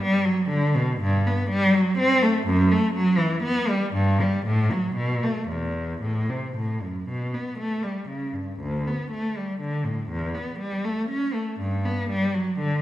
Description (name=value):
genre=classical, baroque-style suite movement for unaccompanied cello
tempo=110-124 BPM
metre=3/4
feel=rubato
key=E minor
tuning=A4 = 440 Hz
part: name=clear cello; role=solo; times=0.0-12.8 s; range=D2 to C#4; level=-22 LUFS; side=equal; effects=none
room=wet recital hall reverb, RT60 1.7 s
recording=recorded in a church or concert hall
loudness=-22 LUFS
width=side -14 dB against mid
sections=0.0-7.1 A section; 7.1-12.8 A section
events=none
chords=none